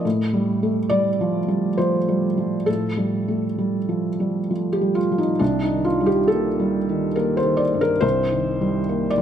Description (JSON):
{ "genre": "neoclassical minimalist piano", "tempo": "68 BPM", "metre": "3/4", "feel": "rubato", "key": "unclear", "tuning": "A4 = 440 Hz", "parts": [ { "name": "felt-muted upright piano", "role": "solo", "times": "0.0-9.2 s", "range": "C2 to D5", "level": "-19 LUFS", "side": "equal", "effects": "none" } ], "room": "moderate scoring stage reverb, RT60 1.9 s", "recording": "none", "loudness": "-19 LUFS", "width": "side -9 dB against mid", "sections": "0.0-9.2 A section", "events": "none", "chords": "0.0 Fadd9/A; 5.4 Cm7", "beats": "| 0.04 0.91 1.78 | 2.67 3.58 4.50 | 5.41 6.29 7.17 | 8.03 8.90" }